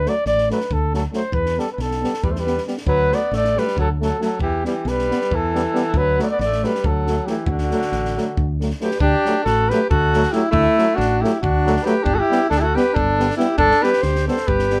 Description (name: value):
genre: balkan folk, Balkan brass band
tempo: 274 BPM (eighths)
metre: 7/8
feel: straight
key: D mixolydian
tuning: A4 = 441 Hz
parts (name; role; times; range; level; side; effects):
- dark cornet; melody; 0.0-14.8 s; E4 to D5; -23 LUFS; equal; none
- woody fretless electric bass; bass; 0.0-14.8 s; G1 to E2; -25 LUFS; equal; none
- bright trombone; accompaniment; 0.1-14.8 s; F#3 to G3; -31 LUFS; equal; none
- warm euphonium; accompaniment; 0.1-14.8 s; A3 to B3; -26 LUFS; equal; none
- compact cocktail drum kit; percussion; 0.1-14.8 s; kick drum, snare drum; -30 LUFS; equal; none
- warm alto saxophone; second line; 2.2-14.8 s; D3 to A4; -25 LUFS; equal; none
room: light reverb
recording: band playing live in one room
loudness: -19 LUFS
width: mono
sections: 0.0-9.0 A section; 9.0-14.8 B section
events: none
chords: 0.0 D; 1.3 Em; 2.9 D; 4.4 Em; 5.9 D; 12.1 G